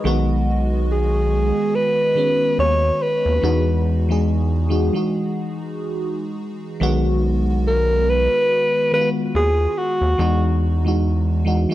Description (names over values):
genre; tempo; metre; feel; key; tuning
contemporary R&B; 71 BPM; 4/4; swing 58% on 16ths; B major; A4 = 438 Hz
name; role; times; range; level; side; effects
FM electric piano with soft pad layer; accompaniment; 0.0-11.7 s; D#3 to D#5; -22 LUFS; equal; chorus, phaser
rubbery square bass; bass; 0.0-11.7 s; B1 to E2; -19 LUFS; equal; none
breathy alto saxophone; melody; 0.9-10.6 s; F#4 to C#5; -19 LUFS; equal; tape echo
room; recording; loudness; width
small room ambience; dry, gritty hardware recording; -17 LUFS; side -14 dB against mid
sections
0.0-11.7 A section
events
none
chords
0.0 B6; 3.4 Emaj9; 6.8 B6; 10.2 Emaj9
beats
| 0.05 0.89 1.74 2.58 | 3.43 4.27 5.12 5.96 | 6.81 7.65 8.50 9.34 | 10.19 11.03